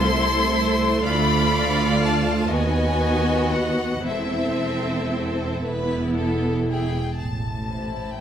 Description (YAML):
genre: classical, slow romantic movement for string orchestra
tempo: 37-46 BPM (dotted quarters)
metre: 6/8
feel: rubato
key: A minor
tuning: A4 = 440 Hz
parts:
  - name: rich chamber violin section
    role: melody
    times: 0.0-8.2 s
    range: E5 to C6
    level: -26 LUFS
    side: left 4 dB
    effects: none
  - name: rich chamber violin section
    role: second line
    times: 0.0-8.2 s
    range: E4 to F5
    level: -27 LUFS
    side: left 1 dB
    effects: none
  - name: rich chamber viola section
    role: accompaniment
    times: 0.0-7.0 s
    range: A3 to F#4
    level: -24 LUFS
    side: right 2 dB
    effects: none
  - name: rich chamber double bass section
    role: bass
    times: 0.0-8.2 s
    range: E1 to D#2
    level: -26 LUFS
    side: right 2 dB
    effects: none
  - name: warm chamber cello section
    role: bass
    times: 0.0-8.2 s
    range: C2 to A2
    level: -29 LUFS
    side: right 2 dB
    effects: none
room: wet recital hall reverb, RT60 1.4 s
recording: none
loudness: -20 LUFS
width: side -9 dB against mid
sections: 0.0-7.2 A section; 7.2-8.2 B section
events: none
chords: 0.0 Am/C; 1.0 Bdim/D; 2.5 B/D#; 4.0 Am/E; 5.6 E; 7.2 Am